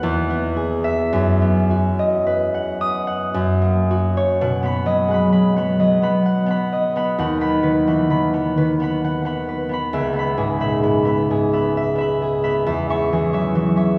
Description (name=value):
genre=classical, solo harp piece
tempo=52-70 BPM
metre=3/4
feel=rubato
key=B major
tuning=A4 = 441 Hz
part: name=concert harp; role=solo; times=0.0-14.0 s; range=C#2 to D#6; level=-19 LUFS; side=equal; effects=none
room=wet cathedral reverb, RT60 4.9 s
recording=recorded in a church or concert hall, studio reverb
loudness=-19 LUFS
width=mono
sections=0.0-4.4 A section; 4.4-14.0 B section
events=none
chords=0.0 E; 1.1 B/F#; 3.3 F#; 4.4 B; 7.2 B/D#; 9.9 C#m7; 12.7 C#m/E